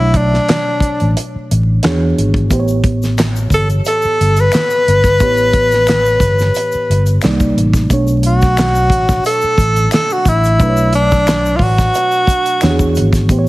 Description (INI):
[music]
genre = R&B, neo-soul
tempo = 89 BPM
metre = 4/4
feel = swing 53% on 16ths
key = B minor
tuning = A4 = 438 Hz
[part]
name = breathy tenor saxophone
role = melody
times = 0.0-13.0 s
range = D4 to B4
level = -14 LUFS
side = equal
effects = none
[part]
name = mellow FM electric piano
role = accompaniment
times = 0.0-13.5 s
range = A2 to D5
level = -19 LUFS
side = right 2 dB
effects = chorus
[part]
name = fingered electric bass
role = bass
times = 0.0-13.5 s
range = G1 to E2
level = -15 LUFS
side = equal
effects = none
[part]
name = damped 70s drum kit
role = drums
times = 0.1-13.5 s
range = handclaps, hi-hat, kick drum, snare drum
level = -16 LUFS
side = equal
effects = none
[part]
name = egg shaker and finger snaps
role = percussion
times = 2.5-13.5 s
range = none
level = -29 LUFS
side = left 6 dB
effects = none
[sound]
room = light reverb, small room ambience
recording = heavily compressed radio sound, vinyl crackle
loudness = -11 LUFS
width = side -18 dB against mid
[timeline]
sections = 0.0-7.9 A section; 7.9-13.5 B section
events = none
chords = 0.0 Bm7; 1.8 E13; 2.5 A9; 7.2 Cm7; 7.9 Bm7; 12.6 E13